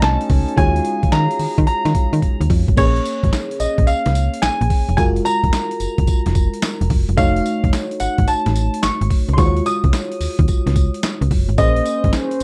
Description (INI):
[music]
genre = R&B, new jack swing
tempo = 109 BPM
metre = 4/4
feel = swing 67% on 16ths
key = Bb minor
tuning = A4 = 435 Hz
[part]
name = clear concert grand piano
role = melody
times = 0.0-12.1 s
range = Db5 to Eb6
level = -24 LUFS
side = equal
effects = none
[part]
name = FM electric piano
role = accompaniment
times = 0.0-12.4 s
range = Ab3 to Db5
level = -26 LUFS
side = equal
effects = chorus
[part]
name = mellow hollow large flute ensemble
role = sustained chords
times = 0.0-2.8, 11.6-12.4 s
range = Db4 to F5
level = -30 LUFS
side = equal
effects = none
[part]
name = slap-like FM bass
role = bass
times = 0.0-12.4 s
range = F1 to Eb3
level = -21 LUFS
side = equal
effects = none
[part]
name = boom bap sampler-style drum kit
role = drums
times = 0.0-12.4 s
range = crash cymbal, handclaps, hi-hat, kick drum, snare drum, tambourine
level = -21 LUFS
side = equal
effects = overdrive
[sound]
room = light reverb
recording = dark, warm production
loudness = -17 LUFS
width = mono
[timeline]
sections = 0.0-2.8 A section; 2.8-12.4 B section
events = drum fill 2.2-2.8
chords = 0.0 F7b9b13 (rootless); 0.6 Ebm11; 2.8 Bbm7; 5.0 Gbmaj9; 7.2 F7b9b13; 9.4 Ebm11; 11.6 Bbm9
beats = 0.02 | 0.57 1.12 1.67 2.23 | 2.77 3.33 3.88 4.43 | 4.98 5.53 6.08 6.63 | 7.18 7.73 8.28 8.83 | 9.38 9.93 10.48 11.03 | 11.58 12.13